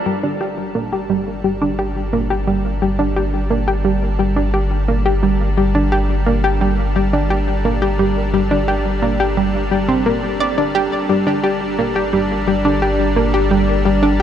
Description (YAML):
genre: ambient, sequencer-driven space music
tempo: 87 BPM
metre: 4/4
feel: straight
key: G minor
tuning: A4 = 440 Hz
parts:
  - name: lush unison pad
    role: sustained chords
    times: 0.0-14.2 s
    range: G3 to Bb4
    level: -24 LUFS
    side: equal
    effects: chorus
  - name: round analog bass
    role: bass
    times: 0.0-14.2 s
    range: G1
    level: -21 LUFS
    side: equal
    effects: none
  - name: analog pluck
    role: riff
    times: 0.1-14.2 s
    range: G3 to D5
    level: -17 LUFS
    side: equal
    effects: chorus, tape echo
room: wet cathedral reverb, RT60 4.7 s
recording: in a vast, echoing space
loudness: -15 LUFS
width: side -10 dB against mid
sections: 0.0-14.2 A section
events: fade-in on analog synth pad 0.0-14.2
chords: 0.0 Gm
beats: 0.58 1.27 1.96 | 2.65 3.34 4.03 4.72 | 5.41 6.10 6.79 7.47 | 8.16 8.85 9.54 10.23 | 10.92 11.61 12.30 12.99 | 13.68